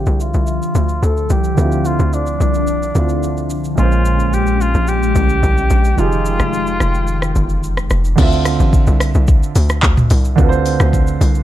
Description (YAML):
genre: amapiano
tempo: 109 BPM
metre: 4/4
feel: straight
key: unclear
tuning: A4 = 438 Hz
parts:
  - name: breathy alto saxophone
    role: melody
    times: 0.0-7.6 s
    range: D4 to A4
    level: -21 LUFS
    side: left 1 dB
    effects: low-pass filter, digital delay
  - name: dark grand piano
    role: accompaniment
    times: 0.0-11.4 s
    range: Bb2 to E5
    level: -20 LUFS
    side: right 6 dB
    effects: low-pass filter
  - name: hollow soft pad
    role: sustained chords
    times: 0.0-8.2 s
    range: D3 to G5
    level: -22 LUFS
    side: left 3 dB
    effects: ensemble chorus, sidechain pumping, low-pass filter
  - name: tight log drum bass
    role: bass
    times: 0.0-11.4 s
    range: F1 to D2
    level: -16 LUFS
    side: equal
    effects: none
  - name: afro-pop drum kit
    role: drums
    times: 0.1-11.4 s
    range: crash cymbal, handclaps, hi-hat, kick drum, rim click, shaker, toms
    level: -17 LUFS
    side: equal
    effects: none
  - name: warm sub bass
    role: bass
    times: 3.8-8.1 s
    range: F1 to Bb1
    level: -19 LUFS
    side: equal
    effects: none
room: digital ambience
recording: dark, warm production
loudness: -13 LUFS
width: side -12 dB against mid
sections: 0.0-8.2 A section; 8.2-11.4 B section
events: filter sweep 0.0-8.2; break 6.0-8.2; drop 8.2-11.4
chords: 0.0 Dm9; 3.8 Bbm9; 6.0 Fm9; 8.2 Dm9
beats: 0.47 1.03 | 1.58 2.13 2.68 3.23 | 3.78 4.33 4.88 5.43 | 5.98 6.53 7.08 7.63 | 8.18 8.73 9.28 9.83 | 10.38 10.93